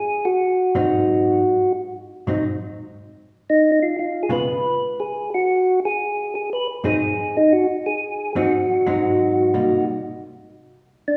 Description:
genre	jazz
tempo	118 BPM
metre	4/4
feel	swing 67% on 8ths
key	Ab mixolydian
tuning	A4 = 438 Hz
part	percussive tonewheel organ	melody	0.0-11.2 s	D4 to Cb5	-21 LUFS	equal	slow rotary speaker
part	hollow-body jazz guitar	accompaniment	0.7-9.8 s	Ab2 to F4	-26 LUFS	equal	none
room	wet recital hall reverb, RT60 1.6 s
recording	recorded in a church or concert hall, small room ambience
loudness	-20 LUFS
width	mono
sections	0.0-11.2 A section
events	none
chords	0.0 Ab7; 2.4 N.C.; 3.5 Db7; 5.5 Ab7; 9.5 Cm7; 10.6 N.C.

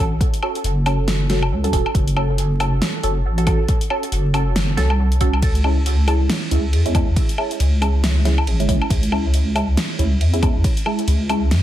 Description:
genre	deep dubstep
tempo	138 BPM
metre	4/4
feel	swing 58% on 16ths, half-time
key	C# harmonic minor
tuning	A4 = 440 Hz
part	filtered dub chord stab	stabs	0.0-11.6 s	G#3 to A4	-24 LUFS	right 2 dB	phaser, analog chorus, dub echo
part	deep soft wobble bass	bass	0.0-11.6 s	E1 to F#2	-18 LUFS	equal	chorus, tube saturation
part	deep house drum kit	drums	0.2-11.6 s	hi-hat, ride cymbal, snare drum, woodblock	-24 LUFS	equal	none
part	electronic kick drum	drums	0.2-10.7 s	none	-19 LUFS	equal	none
room	digital ambience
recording	dense, heavily limited modern master, vinyl crackle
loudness	-16 LUFS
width	side -12 dB against mid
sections	0.0-11.6 A section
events	none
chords	0.0 F#m; 5.4 C#m

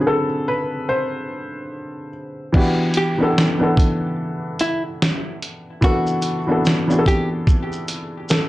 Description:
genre	lo-fi hip hop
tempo	73 BPM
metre	4/4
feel	swing 59% on 16ths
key	E minor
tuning	A4 = 441 Hz
part	felt-muted upright piano	accompaniment	0.0-8.5 s	D3 to F#5	-20 LUFS	equal	cassette tape, low-pass filter, plate reverb
part	dusty soul sampler-style drum kit	drums	2.5-8.5 s	crash cymbal, hi-hat, kick drum, shaker, snare drum	-19 LUFS	equal	none
part	archtop guitar, miked and amplified	melody	3.0-7.3 s	E4 to G4	-24 LUFS	equal	plate reverb, analog delay
room	moderate studio reverb, RT60 0.5 s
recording	cassette tape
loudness	-17 LUFS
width	side -17 dB against mid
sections	0.0-2.5 A section; 2.5-8.5 B section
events	felt piano solo 0.0-2.5; filter sweep on felt piano 0.0-2.5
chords	0.0 D7; 2.5 Em9

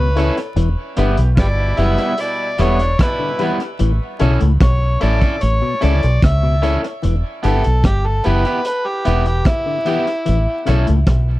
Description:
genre	roots reggae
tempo	74 BPM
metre	4/4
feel	straight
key	E dorian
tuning	A4 = 441 Hz
part	overdriven harmonica	melody	0.0-10.7 s	E4 to E5	-22 LUFS	equal	tape echo
part	auto-wah clav	arpeggios	0.0-11.0 s	A2 to E3	-23 LUFS	left 5 dB	none
part	deep dub fingered electric bass	bass	0.0-11.4 s	E1 to C#2	-15 LUFS	equal	none
part	electric guitar at the edge of break-up	accompaniment	0.2-10.9 s	G3 to A4	-24 LUFS	right 3 dB	tape echo
part	warm upright piano	stabs	0.2-10.9 s	E4 to C#5	-24 LUFS	left 6 dB	none
part	crunchy breakbeat drum kit	drums	0.2-11.3 s	hi-hat, kick drum, rim click	-18 LUFS	equal	tape echo
part	clear horn section	second line	1.0-3.6 s	B2 to G4	-28 LUFS	right 2 dB	tape echo
room	little or no reverb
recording	dry, close 1970s-style studio recording, vinyl crackle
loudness	-14 LUFS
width	side -17 dB against mid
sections	0.0-7.0 A section; 7.0-11.4 B section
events	harmonica solo 7.0-11.4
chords	0.0 A; 0.6 Em; 3.8 A; 7.0 Em; 10.3 A

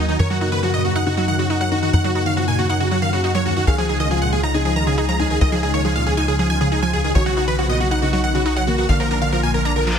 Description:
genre	trance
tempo	138 BPM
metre	4/4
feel	straight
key	Eb minor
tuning	A4 = 440 Hz
part	big supersaw lead	melody	0.0-9.9 s	Eb4 to Bb5	-22 LUFS	right 1 dB	ping-pong delay
part	dark baby grand piano	second line	0.0-10.0 s	Bb3 to Bb4	-27 LUFS	left 4 dB	ping-pong delay
part	supersaw stab	second line	0.0-9.9 s	Eb4 to Bb5	-28 LUFS	right 1 dB	none
part	analog string pad	sustained chords	0.0-9.9 s	Db3 to Gb4	-25 LUFS	left 1 dB	ensemble chorus
part	tight sequencer bass	bass	0.0-10.0 s	Bb1 to Gb2	-21 LUFS	equal	none
part	wide unison pluck	arpeggios	0.1-9.9 s	D2 to Eb4	-24 LUFS	right 1 dB	ping-pong delay
part	reverse cymbal	sound effects	9.8-10.0 s	none	-23 LUFS	left 3 dB	none
room	light reverb, digital ambience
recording	dense, heavily limited modern master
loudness	-16 LUFS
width	side -7 dB against mid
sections	0.0-10.0 A section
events	filter sweep on analog synth pad 0.0-10.0; reverse cymbal 9.8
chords	0.0 Ebm; 3.7 Db; 7.2 Bsus2; 8.9 Bb

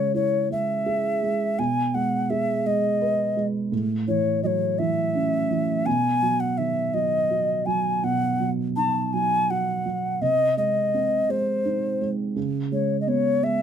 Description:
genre	children's music, lullaby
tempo	56 BPM (dotted quarters)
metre	6/8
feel	rubato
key	unclear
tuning	A4 = 440 Hz
part	breathy alto ocarina	melody	0.0-13.6 s	B#4 to A5	-23 LUFS	left 2 dB	none
part	felt-muted upright piano	accompaniment	0.0-13.6 s	A2 to B4	-25 LUFS	right 4 dB	none
room	light reverb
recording	minimal, uncompressed stereo recording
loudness	-21 LUFS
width	side -8 dB against mid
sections	0.0-13.6 A section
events	none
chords	0.0 C#m; 1.6 B6; 3.7 A6; 5.9 B; 10.2 G#/B#; 12.4 C#7(no3)

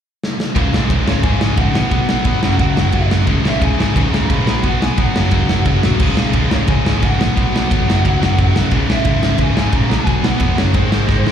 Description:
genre	punk rock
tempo	176 BPM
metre	4/4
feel	straight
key	unclear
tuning	A4 = 441 Hz
part	big rock drum kit	drums	0.2-11.3 s	crash cymbal, kick drum, ride cymbal, snare drum	-17 LUFS	left 1 dB	none
part	high-gain distorted guitar	riff	0.5-11.3 s	C#2 to B3	-25 LUFS	equal	distortion
part	distorted electric guitar	riff	0.6-11.3 s	C#2 to B3	-23 LUFS	left 14 dB	overdrive, slapback echo
part	overdriven electric guitar	riff	0.6-11.3 s	C#2 to B3	-21 LUFS	right 11 dB	slapback echo
part	overdriven picked electric bass	bass	0.6-11.3 s	C#1 to C#2	-18 LUFS	equal	none
part	lead guitar through a small cranked amp	melody	1.1-11.2 s	B#4 to B5	-24 LUFS	equal	overdrive, slapback echo, tape echo
room	little or no reverb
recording	live gig heard through the venue's PA, club reverb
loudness	-13 LUFS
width	side -9 dB against mid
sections	0.6-11.3 A section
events	drum fill 0.2-0.6, 11.1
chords	0.0 N.C.; 0.6 C#5; 1.8 B5; 2.4 F#5; 3.3 C#5; 4.5 B5; 5.2 F#5; 6.0 C#5; 7.2 B5; 7.9 F#5; 8.7 C#m; 9.9 B5; 10.6 F#5; 10.8 G#

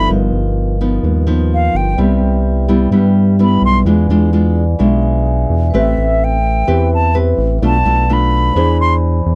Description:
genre	bossa nova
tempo	128 BPM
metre	4/4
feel	straight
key	A minor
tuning	A4 = 442 Hz
part	reedy concert flute	melody	0.0-8.9 s	E5 to C6	-19 LUFS	equal	none
part	nylon-string guitar	accompaniment	0.0-9.4 s	G2 to C5	-18 LUFS	equal	none
part	vibraphone with medium mallets	accompaniment	0.0-9.4 s	A4 to B5	-26 LUFS	equal	none
part	round analog bass	bass	0.0-9.4 s	G1 to G2	-17 LUFS	equal	none
room	little or no reverb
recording	dry, close 1970s-style studio recording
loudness	-14 LUFS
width	mono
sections	0.0-9.4 A section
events	flute solo 0.0-9.4; vibraphone fill 4.3-5.7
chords	0.1 G7alt; 2.0 Cmaj7; 3.9 E7b9; 5.7 Am9; 7.6 Bm7b5; 8.6 E7b13

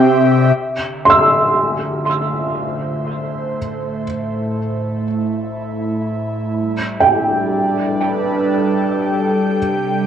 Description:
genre	ambient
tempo	60 BPM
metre	3/4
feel	straight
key	D dorian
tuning	A4 = 438 Hz
part	airy breathy pad	sustained chords	0.0-10.1 s	A2 to G5	-17 LUFS	equal	chorus, cassette tape
part	felt-muted upright piano	arpeggios	1.1-10.0 s	G5 to E6	-16 LUFS	right 1 dB	cassette tape, analog delay
room	wet spring reverb, RT60 1.4 s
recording	home recording on cassette, faint mains hum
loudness	-15 LUFS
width	side -8 dB against mid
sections	0.6-10.1 A section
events	fade-in on analog synth pad 0.6-10.1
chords	0.0 C; 0.6 Dm7; 3.6 Am; 6.6 Gadd9

